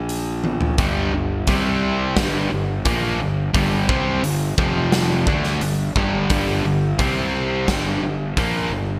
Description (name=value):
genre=hard rock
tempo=87 BPM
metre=4/4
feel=straight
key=G minor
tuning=A4 = 440 Hz
part: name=fuzz fingered electric bass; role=bass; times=0.0-9.0 s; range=F1 to D2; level=-27 LUFS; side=equal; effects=overdrive
part: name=big rock drum kit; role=drums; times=0.1-8.5 s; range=hi-hat, kick drum, snare drum, toms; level=-26 LUFS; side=equal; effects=gated reverb
part: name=overdriven electric guitar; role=riff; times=0.8-9.0 s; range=F2 to D4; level=-23 LUFS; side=equal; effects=none
room=moderate lush hall reverb, RT60 1.8 s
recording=bright 1980s-style digital production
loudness=-20 LUFS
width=mono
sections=0.0-9.0 A section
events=drum fill 0.4-0.8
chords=0.0 N.C.; 0.8 G5; 1.5 C5; 2.2 Gm; 4.6 F5; 5.3 G5; 7.0 C5; 7.7 Gm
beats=0.08 | 0.78 1.47 2.16 2.85 | 3.54 4.24 4.93 5.62 | 6.30 6.99 7.68 8.37